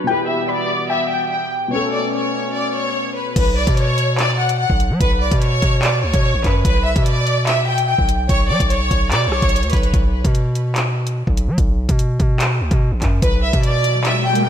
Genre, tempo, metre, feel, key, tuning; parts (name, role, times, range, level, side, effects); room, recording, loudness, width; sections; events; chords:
hip hop, drill; 146 BPM; 4/4; half-time; B minor; A4 = 440 Hz
warm studio violin section; melody; 0.0-9.9, 13.2-14.5 s; B4 to G5; -20 LUFS; left 1 dB; low-pass filter, ping-pong delay
dark concert grand piano; accompaniment; 0.0-3.4 s; B2 to A4; -25 LUFS; left 3 dB; ensemble chorus, low-pass filter
warm woodwind section; sustained chords; 0.0-3.3 s; B2 to C#4; -27 LUFS; left 1 dB; low-pass filter
soft round pluck; second line; 0.1-1.7 s; G5 to B5; -24 LUFS; left 5 dB; chorus, ping-pong delay
distorted 808-style bass; bass; 3.4-14.5 s; A1 to F#3; -19 LUFS; equal; distortion
drill drum kit; drums; 3.4-14.4 s; crash cymbal, handclaps, hi-hat, kick drum, rim click; -19 LUFS; equal
riser; sound effects; 13.8-14.5 s; -24 LUFS; right 2 dB
moderate lush hall reverb, RT60 1.7 s; dreamy mix soaked in reverb; -15 LUFS; side -9 dB against mid
0.0-3.4 A section; 3.4-14.5 B section
riser 13.8-14.5
0.1 Em/B; 1.7 A/B; 3.4 N.C.; 6.6 Bm; 8.3 Bsus2; 9.9 N.C.; 13.2 Bmadd11